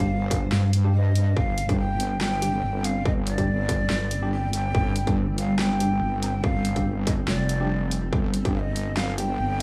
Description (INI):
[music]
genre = deep dubstep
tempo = 142 BPM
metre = 4/4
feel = swing 54% on 16ths, half-time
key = unclear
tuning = A4 = 440 Hz
[part]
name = breathy ney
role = melody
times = 0.0-9.6 s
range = D5 to Bb5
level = -33 LUFS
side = equal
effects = dub echo
[part]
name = granular cloud pad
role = sustained chords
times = 0.0-9.6 s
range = G3 to G5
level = -34 LUFS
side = equal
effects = built-in reverb
[part]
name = tine electric piano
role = stabs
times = 0.0-9.3 s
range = G3 to G4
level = -35 LUFS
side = equal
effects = overdrive, dub echo
[part]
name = wobble bass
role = bass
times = 0.0-9.6 s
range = F1 to G2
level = -27 LUFS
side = equal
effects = chorus, tube saturation
[part]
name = dubstep drum kit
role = drums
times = 0.0-9.3 s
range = handclaps, hi-hat, snare drum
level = -32 LUFS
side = equal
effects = none
[part]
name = electronic kick drum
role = drums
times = 0.0-8.5 s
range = none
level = -30 LUFS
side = equal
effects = distortion
[sound]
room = digital ambience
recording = dry, gritty hardware recording, small room ambience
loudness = -24 LUFS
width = mono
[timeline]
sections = 0.0-9.6 A section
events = none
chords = 0.0 G5